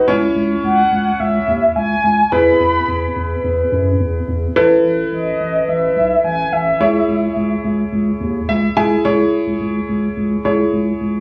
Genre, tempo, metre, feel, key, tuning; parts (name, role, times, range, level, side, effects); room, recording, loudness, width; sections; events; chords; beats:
synth-pop; 107 BPM; 4/4; straight; C# minor; A4 = 445 Hz
clear concert grand piano; accompaniment; 0.0-11.2 s; C#4 to G#5; -20 LUFS; equal
round analog bass; bass; 0.1-11.2 s; A1 to F#2; -22 LUFS; equal
mellow horn-like synth lead; melody; 0.6-7.6 s; D#5 to B5; -19 LUFS; equal; chorus, plate reverb, digital delay
moderate studio reverb, RT60 0.5 s; recorded on a phone in the room, club reverb, compression; -16 LUFS; mono
0.0-9.0 A section; 9.0-11.2 B section
grand piano fill 8.2-9.0
0.1 C#m; 2.3 E; 4.6 Asus2; 6.8 C#m
| 0.08 0.64 1.20 1.76 | 2.32 2.88 3.44 4.00 | 4.56 5.12 5.68 6.25 | 6.81 7.37 7.93 8.49 | 9.05 9.61 10.17 10.73